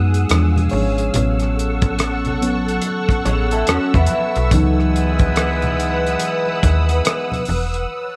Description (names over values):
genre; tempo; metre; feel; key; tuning
R&B, neo-soul; 71 BPM; 4/4; swing 62% on 16ths; C# minor; A4 = 440 Hz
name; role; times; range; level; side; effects
reed electric piano; accompaniment; 0.0-7.9 s; E3 to C#5; -25 LUFS; equal; overdrive, phaser
soft string machine; sustained chords; 0.0-8.2 s; G#4 to E6; -26 LUFS; equal; ensemble chorus
slap-like FM bass; bass; 0.0-7.9 s; E1 to F#2; -21 LUFS; equal; none
cloth-damped thuddy drum kit; drums; 0.1-7.9 s; hi-hat, kick drum, rim click; -23 LUFS; equal; none
congas; percussion; 0.3-7.7 s; none; -32 LUFS; equal; none
electric guitar through a small old amp; second line; 3.3-4.5 s; B3 to C#5; -23 LUFS; equal; lush chorus
warm horn section; stabs; 4.5-7.4 s; G#3 to E4; -26 LUFS; equal; none
room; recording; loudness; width
light reverb, small room ambience; none; -18 LUFS; mono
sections
0.0-8.2 A section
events
reed electric piano solo 0.0-8.2; band accent 7.9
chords
0.3 E7b9; 1.1 A6; 4.5 C#m11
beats
0.29 | 1.14 1.98 2.83 3.67 | 4.52 5.36 6.21 7.05 | 7.90